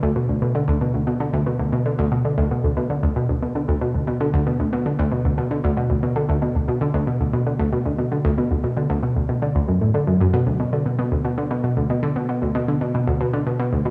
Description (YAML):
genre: ambient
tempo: 115 BPM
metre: 4/4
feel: straight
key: B minor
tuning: A4 = 441 Hz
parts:
  - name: analog pluck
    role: solo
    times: 0.0-13.9 s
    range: D2 to D3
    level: -21 LUFS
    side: equal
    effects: chorus, analog delay
room: moderate plate reverb, RT60 3.4 s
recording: studio ambience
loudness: -21 LUFS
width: mono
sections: 0.0-2.1 A section; 2.1-13.9 A section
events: none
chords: none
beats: | 0.03 0.55 1.07 1.60 | 2.12 2.64 3.16 3.68 | 4.21 4.73 5.25 5.77 | 6.29 6.81 7.33 7.86 | 8.38 8.90 9.42 9.94 | 10.46 10.99 11.51 12.03 | 12.55 13.07 13.60